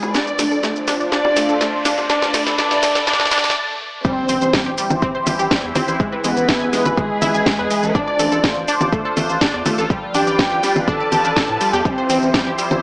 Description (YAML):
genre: melodic techno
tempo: 123 BPM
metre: 4/4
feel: straight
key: A minor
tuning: A4 = 440 Hz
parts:
  - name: expressive portamento lead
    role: melody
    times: 0.0-12.5 s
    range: G#3 to A4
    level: -22 LUFS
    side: equal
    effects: ensemble chorus, sidechain pumping, tape echo
  - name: dark symphonic violin section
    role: second line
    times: 0.0-12.5 s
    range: G#4 to A5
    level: -23 LUFS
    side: equal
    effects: sidechain pumping, tape echo
  - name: sweeping resonant pad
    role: sustained chords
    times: 0.0-12.8 s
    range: E3 to D5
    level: -24 LUFS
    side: equal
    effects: chorus, sidechain pumping
  - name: house drum kit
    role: drums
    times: 0.0-12.8 s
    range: congas, hi-hat, shaker, snare drum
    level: -20 LUFS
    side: equal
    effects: high-pass filter on perc, high-pass filter on snare, high-pass filter on hats, high-pass filter on room
  - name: riser, swell and impact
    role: sound effects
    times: 0.0-6.0 s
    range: none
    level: -28 LUFS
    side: equal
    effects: none
  - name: wide unison pluck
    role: arpeggios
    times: 0.1-12.8 s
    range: G3 to G#6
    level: -22 LUFS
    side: equal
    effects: wide subtle chorus, sidechain pumping, tape echo
  - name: electronic kick drum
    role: drums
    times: 4.0-12.4 s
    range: none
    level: -20 LUFS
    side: equal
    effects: none
  - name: round analog bass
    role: bass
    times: 4.3-12.8 s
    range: A1 to A2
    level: -26 LUFS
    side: equal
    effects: sidechain pumping
room: moderate lush hall reverb, RT60 1.5 s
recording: high-pass filter, small speaker sound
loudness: -15 LUFS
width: side -24 dB against mid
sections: 0.0-4.0 A section; 4.0-12.8 B section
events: build-up 0.0-4.0; drum fill 0.0-3.6; riser 0.0-3.6; filter sweep on synth pluck 0.0-4.0; filter sweep on analog synth lead 0.0-4.0; filter sweep on analog synth pad 0.0-4.0; filter sweep 0.0-4.0; swell 3.1-4.0; stop 3.6-4.0; drop 4.0-12.8; impact 4.0-6.0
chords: 0.1 Dm7; 2.1 Bm7b5/A; 4.0 Am7; 6.0 E/A; 8.0 Dm7/A; 9.9 G7/A; 11.9 Am7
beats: | 0.14 0.63 1.12 1.61 | 2.10 2.58 3.07 3.56 | 4.05 4.54 5.02 5.51 | 6.00 6.49 6.97 7.46 | 7.95 8.44 8.93 9.41 | 9.90 10.39 10.88 11.37 | 11.85 12.34